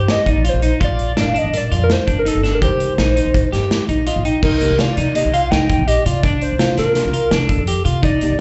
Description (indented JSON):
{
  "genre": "progressive instrumental, band music in an uneven meter",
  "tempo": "166 BPM",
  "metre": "5/4",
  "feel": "straight",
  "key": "unclear",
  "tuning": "A4 = 440 Hz",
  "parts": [
    { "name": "hollow square lead", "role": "melody", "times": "0.0-8.4 s", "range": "A4 to G5", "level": "-22 LUFS", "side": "equal", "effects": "chorus, slapback echo" },
    { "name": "electric guitar at the edge of break-up", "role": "arpeggios", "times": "0.0-8.3 s", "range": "D4 to G4", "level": "-23 LUFS", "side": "equal", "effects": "harmonic tremolo, slapback echo" },
    { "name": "upright bass", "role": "bass", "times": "0.0-8.4 s", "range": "G1 to C3", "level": "-22 LUFS", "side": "equal", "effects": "none" },
    { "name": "loose indie drum kit", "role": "drums", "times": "0.1-8.3 s", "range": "crash cymbal, hi-hat, kick drum, snare drum", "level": "-23 LUFS", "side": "equal", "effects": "none" },
    { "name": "bell-like tine electric piano", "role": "accompaniment", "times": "1.2-8.4 s", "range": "Bb2 to G5", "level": "-26 LUFS", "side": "equal", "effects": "slapback echo" }
  ],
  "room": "studio reverb",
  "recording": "live gig heard through the venue's PA, club reverb, nothing above 8.0 kHz",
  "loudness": "-17 LUFS",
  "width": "mono",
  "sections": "0.0-4.4 A section; 4.4-8.4 B section",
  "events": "tine electric piano fill 3.9-4.4",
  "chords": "0.0 Cm7; 0.8 Bb6; 2.6 Cm7; 6.2 Bbadd9/C"
}